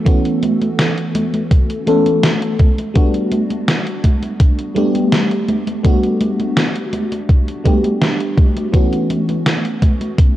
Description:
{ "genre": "vaporwave", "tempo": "83 BPM", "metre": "4/4", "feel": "straight", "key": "unclear", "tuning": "A4 = 441 Hz", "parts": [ { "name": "FM electric piano with soft pad layer", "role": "accompaniment", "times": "0.0-10.4 s", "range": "E3 to A4", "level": "-17 LUFS", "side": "equal", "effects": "phaser, wide subtle chorus, analog delay" }, { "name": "electronic kick drum", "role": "drums", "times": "0.1-10.3 s", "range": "none", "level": "-12 LUFS", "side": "equal", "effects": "none" }, { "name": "gated 80s digital drum machine", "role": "drums", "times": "0.1-10.3 s", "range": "congas, hi-hat, snare drum", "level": "-20 LUFS", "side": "right 1 dB", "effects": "gated reverb, gated reverb snare, overdrive" } ], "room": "light reverb, digital ambience", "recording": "dry, gritty hardware recording, cassette tape", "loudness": "-13 LUFS", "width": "side -14 dB against mid", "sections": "0.0-10.4 A section", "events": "none", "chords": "0.0 A69; 2.6 Gmaj7; 8.7 A69", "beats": "| 0.07 0.79 1.51 2.23 | 2.96 3.68 4.40 5.13 | 5.85 6.57 7.29 8.02 | 8.74 9.46 10.19" }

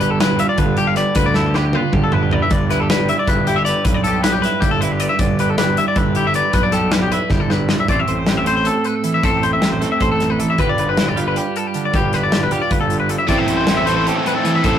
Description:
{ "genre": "math rock and midwest emo", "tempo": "311 BPM (eighths)", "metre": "7/8", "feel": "straight", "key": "A minor", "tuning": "A4 = 439 Hz", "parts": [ { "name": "twelve-string electric guitar", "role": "accompaniment", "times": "0.0-14.8 s", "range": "G2 to C5", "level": "-22 LUFS", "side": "right 6 dB", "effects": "harmonic tremolo" }, { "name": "twangy electric guitar", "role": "arpeggios", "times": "0.0-14.8 s", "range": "G4 to F5", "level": "-19 LUFS", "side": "left 4 dB", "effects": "none" }, { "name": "fuzz fingered electric bass", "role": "bass", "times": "0.0-14.8 s", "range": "G1 to D2", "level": "-21 LUFS", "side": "equal", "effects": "overdrive" }, { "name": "modern studio drum kit", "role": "drums", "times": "0.0-14.7 s", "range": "hi-hat, kick drum, snare drum, toms", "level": "-20 LUFS", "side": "equal", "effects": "none" }, { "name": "biting overdriven guitar", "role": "riff", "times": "13.3-14.8 s", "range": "A2 to E4", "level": "-18 LUFS", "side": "equal", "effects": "none" } ], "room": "light reverb", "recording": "rough rehearsal-room recording, warm saturation", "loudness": "-14 LUFS", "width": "side -9 dB against mid", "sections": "0.0-7.9 A section; 7.9-14.8 B section", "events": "drum fill 1.3-2.5, 7.3-7.9", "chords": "0.0 G7; 2.5 Em/G; 7.9 Am7; 10.6 G7; 13.3 Am7", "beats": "0.00 0.19 0.38 0.58 0.77 0.96 | 1.15 1.34 1.54 1.73 1.92 2.11 2.31 | 2.50 2.69 2.88 3.07 3.27 3.46 3.65 | 3.84 4.04 4.23 4.42 4.61 4.80 5.00 | 5.19 5.38 5.58 5.77 5.96 6.15 6.34 | 6.54 6.73 6.92 7.12 7.31 7.50 7.69 | 7.89 8.08 8.27 8.46 8.66 8.85 9.04 | 9.24 9.43 9.62 9.81 10.01 10.20 10.39 | 10.59 10.78 10.97 11.17 11.36 11.55 11.74 | 11.94 12.13 12.32 12.52 12.71 12.90 13.10 | 13.29 13.48 13.68 13.87 14.06 14.26 14.45 | 14.64" }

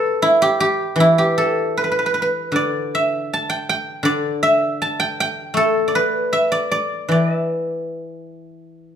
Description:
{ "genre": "chinese traditional, Chinese solo plucked strings", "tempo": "75-82 BPM", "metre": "2/4", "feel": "rubato", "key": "E yu mode", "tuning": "A4 = 440 Hz", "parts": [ { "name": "guzheng", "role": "solo", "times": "0.0-9.0 s", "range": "D3 to A5", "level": "-17 LUFS", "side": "equal", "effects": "none" } ], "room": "moderate large studio reverb, RT60 1.1 s", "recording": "band playing live in one room", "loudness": "-16 LUFS", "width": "side -8 dB against mid", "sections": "0.0-8.7 A section", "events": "none", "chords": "none", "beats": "0.19 | 0.96 1.76 | 2.55 3.32 | 4.06 4.80 | 5.55 6.31 | 7.10 7.90 | 8.70" }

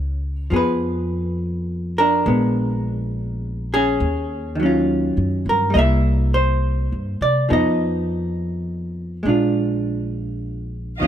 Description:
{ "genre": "jazz ballad", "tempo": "69 BPM", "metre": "4/4", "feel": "swing 66% on 8ths", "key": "unclear", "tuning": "A4 = 440 Hz", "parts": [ { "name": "vintage hollow-body jazz guitar", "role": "accompaniment", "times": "0.0-11.1 s", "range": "Eb3 to E5", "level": "-20 LUFS", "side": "right 1 dB", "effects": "none" }, { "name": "upright bass", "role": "bass", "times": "0.0-11.1 s", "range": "Bb1 to C3", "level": "-23 LUFS", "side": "equal", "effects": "none" }, { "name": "muted studio string section", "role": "sustained chords", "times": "11.0-11.1 s", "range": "Db5 to Eb6", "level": "-20 LUFS", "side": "right 3 dB", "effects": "none" } ], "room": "little or no reverb", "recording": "none", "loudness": "-18 LUFS", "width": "side -10 dB against mid", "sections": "0.0-11.0 A section", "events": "none", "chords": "0.0 Gbmaj9 (rootless); 0.5 Fdim; 2.3 Bb7b9; 4.0 Ebm9; 5.7 C7; 7.5 F7(b5, no3); 9.2 Bb7", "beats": "| 0.52 1.39 2.26 3.13 | 4.00 4.87 5.75 6.62 | 7.50 8.37 9.25 10.13 | 11.02" }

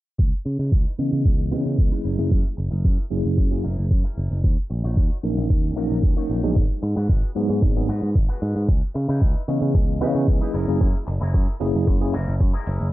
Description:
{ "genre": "nu-disco, nu disco", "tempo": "113 BPM", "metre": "4/4", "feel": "straight", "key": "unclear", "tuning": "A4 = 437 Hz", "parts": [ { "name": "picked electric bass", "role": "bass", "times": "0.2-12.9 s", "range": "F#1 to C#3", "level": "-23 LUFS", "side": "equal", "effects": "sidechain pumping" }, { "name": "electronic kick drum", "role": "drums", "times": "0.2-12.5 s", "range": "none", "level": "-19 LUFS", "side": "equal", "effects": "small room ambience" }, { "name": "electric guitar with an envelope filter", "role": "riff", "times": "0.5-12.9 s", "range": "D#4 to C#5", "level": "-39 LUFS", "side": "left 4 dB", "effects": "wide subtle chorus, low-pass filter" }, { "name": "mellow tine electric piano", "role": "accompaniment", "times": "1.0-12.1 s", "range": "E3 to D#5", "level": "-26 LUFS", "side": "equal", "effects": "overdrive, fast stereo tremolo, sidechain pumping, low-pass filter, tape echo" }, { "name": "electronic hi-hat", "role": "drums", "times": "9.0-12.8 s", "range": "none", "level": "-45 LUFS", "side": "right 1 dB", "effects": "none" } ], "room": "digital ambience", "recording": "low-pass filter", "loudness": "-19 LUFS", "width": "side -16 dB against mid", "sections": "0.2-12.9 A section", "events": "filter sweep on picked electric bass 0.2-12.9; filter sweep on clean electric guitar 0.2-12.9; filter sweep on tine electric piano 0.2-12.9; filter sweep 0.2-12.9", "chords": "0.2 C#m9; 2.0 F#9; 4.4 D#m7; 6.6 G#m7; 8.7 C#m9; 10.5 F#9", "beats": "| 0.19 0.72 1.25 1.78 | 2.32 2.85 3.38 3.91 | 4.44 4.97 5.50 6.03 | 6.56 7.09 7.62 8.16 | 8.69 9.22 9.75 10.28 | 10.81 11.34 11.87 12.40" }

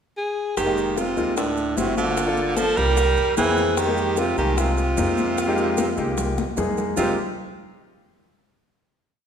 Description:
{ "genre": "Afro-Cuban jazz", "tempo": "150 BPM", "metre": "4/4", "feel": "straight", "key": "F minor", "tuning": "A4 = 440 Hz", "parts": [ { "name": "warm alto saxophone", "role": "melody", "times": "0.2-7.2 s", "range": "D4 to Bb4", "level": "-24 LUFS", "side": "equal", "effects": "none" }, { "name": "edgy baritone saxophone", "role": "second line", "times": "0.6-7.2 s", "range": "A2 to G3", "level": "-26 LUFS", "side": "right 4 dB", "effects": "none" }, { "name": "upright bass", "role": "bass", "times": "0.6-7.2 s", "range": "F1 to F2", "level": "-28 LUFS", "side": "equal", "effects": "none" }, { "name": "bongos", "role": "percussion", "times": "0.6-7.1 s", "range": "none", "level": "-32 LUFS", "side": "left 6 dB", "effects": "none" }, { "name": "congas", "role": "percussion", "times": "0.6-7.1 s", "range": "none", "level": "-31 LUFS", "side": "left 3 dB", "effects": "none" }, { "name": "maracas", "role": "percussion", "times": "0.6-7.1 s", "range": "none", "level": "-37 LUFS", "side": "right 6 dB", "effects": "none" }, { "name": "warm baby grand piano", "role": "accompaniment", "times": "0.7-7.2 s", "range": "Ab3 to G5", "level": "-26 LUFS", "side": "left 2 dB", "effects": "none" } ], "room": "moderate scoring stage reverb, RT60 1.6 s", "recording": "minimal, uncompressed stereo recording", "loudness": "-19 LUFS", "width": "side -8 dB against mid", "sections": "0.0-0.6 pickup bar; 0.6-7.0 A section; 7.0-8.6 final chord", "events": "drum fill 6.0-7.0", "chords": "0.0 N.C.; 0.6 Fm11; 1.4 D7; 2.2 Gm7; 3.0 C7; 3.8 Fm11", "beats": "0.18 | 0.58 0.97 1.38 1.77 | 2.17 2.57 2.97 3.38 | 3.77 4.17 4.58 4.98 | 5.38 5.78 6.18 6.58 | 6.98" }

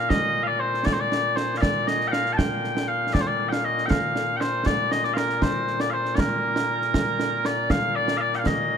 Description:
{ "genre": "scottish traditional, Scottish pipe music", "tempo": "79 BPM (dotted quarters)", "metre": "6/8", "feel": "straight", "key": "Bb major", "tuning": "A4 = 440 Hz", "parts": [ { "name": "mellow small bagpipes", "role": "melody", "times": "0.0-8.8 s", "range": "Bb2 to A5", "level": "-23 LUFS", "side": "left 1 dB", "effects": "none" }, { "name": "concert snare drum and concert bass drum", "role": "drums", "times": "0.1-8.6 s", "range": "none", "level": "-26 LUFS", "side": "right 1 dB", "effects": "none" } ], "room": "moderate concert hall reverb, RT60 2.6 s", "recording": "none", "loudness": "-21 LUFS", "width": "side -7 dB against mid", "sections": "0.0-7.7 A section; 7.7-8.8 B section", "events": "none", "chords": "none", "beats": "| 0.10 0.86 | 1.62 2.38 | 3.14 3.90 | 4.66 5.42 | 6.18 6.94 | 7.70 8.46" }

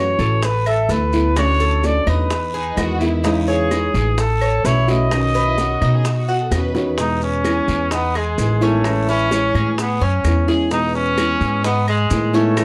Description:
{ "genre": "latin, Cuban son and guajira", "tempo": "128 BPM", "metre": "4/4", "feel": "straight", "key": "E major", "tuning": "A4 = 441 Hz", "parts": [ { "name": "warm trumpet", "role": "melody", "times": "0.0-12.6 s", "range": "G#3 to D#5", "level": "-23 LUFS", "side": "equal", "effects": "none" }, { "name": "nylon-string guitar", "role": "accompaniment", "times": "0.0-12.6 s", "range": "B2 to F#4", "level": "-24 LUFS", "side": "equal", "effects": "none" }, { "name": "Cuban tres", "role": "arpeggios", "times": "0.0-12.6 s", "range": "C#4 to E5", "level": "-27 LUFS", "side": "equal", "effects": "none" }, { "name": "upright bass", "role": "bass", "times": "0.0-12.6 s", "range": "A1 to B2", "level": "-22 LUFS", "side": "equal", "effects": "none" }, { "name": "bongos", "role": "percussion", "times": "0.2-12.6 s", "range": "none", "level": "-31 LUFS", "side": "equal", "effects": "none" }, { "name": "guiro", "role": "percussion", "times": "0.2-12.6 s", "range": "none", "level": "-39 LUFS", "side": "equal", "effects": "none" }, { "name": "maracas", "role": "percussion", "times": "0.2-12.6 s", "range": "none", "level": "-40 LUFS", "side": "equal", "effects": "none" }, { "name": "claves", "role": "percussion", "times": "0.7-12.6 s", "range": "none", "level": "-33 LUFS", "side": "equal", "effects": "none" }, { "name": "warm studio violin section", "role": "second line", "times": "2.5-6.9 s", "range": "D#4 to B4", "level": "-31 LUFS", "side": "equal", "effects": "none" } ], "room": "moderate studio reverb, RT60 0.6 s", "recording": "dark, warm production", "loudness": "-18 LUFS", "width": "mono", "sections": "0.0-7.0 A section; 7.0-12.6 B section", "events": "drum fill 6.5-7.0", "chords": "0.4 Asus2; 1.4 Dmaj7; 2.3 Emaj7; 3.2 C#madd9/E; 4.2 A6; 5.1 Badd9; 7.0 Emaj7; 8.8 Amaj7; 10.7 Emaj7", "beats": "0.43 0.90 | 1.37 1.83 2.30 2.77 | 3.24 3.71 4.18 4.64 | 5.11 5.58 6.05 6.51 | 6.98 7.45 7.92 8.38 | 8.85 9.31 9.78 10.25 | 10.71 11.18 11.64 12.11 | 12.57" }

